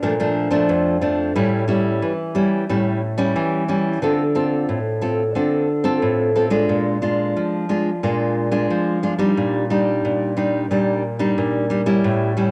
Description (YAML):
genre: samba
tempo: 90 BPM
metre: 4/4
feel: straight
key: D minor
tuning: A4 = 440 Hz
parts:
  - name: nylon-string guitar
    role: solo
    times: 0.0-12.5 s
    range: F2 to A4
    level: -20 LUFS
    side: equal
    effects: cassette tape
room: wet spring reverb, RT60 1.9 s, small room ambience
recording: home recording on cassette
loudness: -20 LUFS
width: mono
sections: 0.0-4.0 A section; 4.0-12.5 B section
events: none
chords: 0.0 Bbmaj7; 1.4 A7; 4.0 Dm7; 6.7 Bb7; 9.4 Ebmaj7/Bb